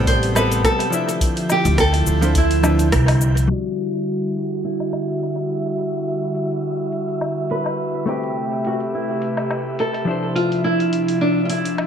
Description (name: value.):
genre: sunset chillout.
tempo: 105 BPM.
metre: 4/4.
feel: swing 55% on 16ths.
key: E minor.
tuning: A4 = 440 Hz.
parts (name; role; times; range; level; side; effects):
nylon-string guitar; melody; 0.0-11.9 s; D4 to C5; -22 LUFS; right 1 dB; analog delay.
hollow-body jazz guitar; accompaniment; 0.0-11.9 s; F3 to E5; -24 LUFS; left 1 dB; auto-pan, vintage 12-bit sampler grit, analog delay.
airy breathy pad; sustained chords; 0.0-11.9 s; C3 to B4; -24 LUFS; equal; chorus.
upright bass; bass; 0.0-3.5 s; A1 to D2; -18 LUFS; equal; none.
wind-like tuned noise texture; texture; 0.0-11.9 s; E5 to G6; -31 LUFS; right 2 dB; built-in reverb.
deep house drum kit; drums; 0.1-11.9 s; cabasa, hi-hat, rim click, woodblock; -26 LUFS; left 2 dB; overdrive, analog delay.
electronic kick drum; drums; 0.1-3.1 s; none; -20 LUFS; equal; none.
room: moderate spring reverb, RT60 1.4 s.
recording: echo-heavy mix, low-pass filter.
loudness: -18 LUFS.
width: side -8 dB against mid.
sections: 0.0-3.5 A section; 3.5-11.9 B section.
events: band accent 2.9; filter sweep on analog synth pad 3.5-11.9; filter sweep 3.5-11.9.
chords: 0.0 Am9; 0.9 Dm9; 3.5 Em9; 8.1 Am9; 10.1 Dm9.